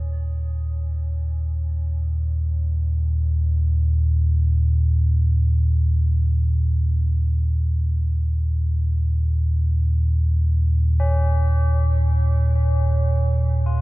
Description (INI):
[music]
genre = ambient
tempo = free time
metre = none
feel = none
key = unclear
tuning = A4 = 440 Hz
[part]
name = tubular bells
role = arpeggios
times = 0.0-13.8 s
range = Db4 to Ab4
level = -32 LUFS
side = left 1 dB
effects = ping-pong delay, shimmer reverb
[part]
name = deep rumbling drone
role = drone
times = 0.0-13.8 s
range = Eb2 to Bb2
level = -18 LUFS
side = equal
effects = built-in reverb, phaser, wide subtle chorus
[sound]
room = small room reverb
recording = none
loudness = -18 LUFS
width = side -20 dB against mid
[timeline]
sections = 0.0-13.8 A section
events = fade-out on tubular bells 0.0-13.8; filter sweep on synth drone 0.0-13.8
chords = 0.0 Eb5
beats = free time